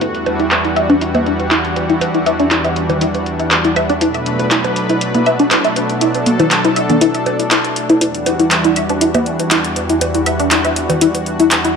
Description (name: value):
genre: progressive house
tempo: 120 BPM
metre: 4/4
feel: straight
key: E minor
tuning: A4 = 439 Hz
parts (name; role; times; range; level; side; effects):
- lush unison pad; sustained chords; 0.0-11.8 s; E2 to B4; -18 LUFS; equal; chorus, vintage 12-bit sampler grit
- wide unison pluck; arpeggios; 0.0-11.7 s; D4 to E5; -16 LUFS; left 1 dB; wide subtle chorus, ping-pong delay
- deep house drum kit; drums; 0.0-11.7 s; handclaps, hi-hat; -18 LUFS; equal; overdrive, low-pass filter on hats, low-pass filter on snare
- bongos and congas; percussion; 0.0-11.6 s; none; -20 LUFS; right 2 dB; none
room: moderate lush hall reverb, RT60 1.8 s, digital ambience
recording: none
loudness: -12 LUFS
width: side -6 dB against mid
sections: 0.0-11.8 A section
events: filter sweep on synth pluck 0.0-11.8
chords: 0.0 Em7; 4.0 Bm7; 8.0 Em7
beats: | 0.01 0.51 1.01 1.51 | 2.01 2.51 3.01 3.51 | 4.01 4.51 5.01 5.51 | 6.01 6.51 7.01 7.51 | 8.01 8.51 9.01 9.51 | 10.01 10.51 11.01 11.51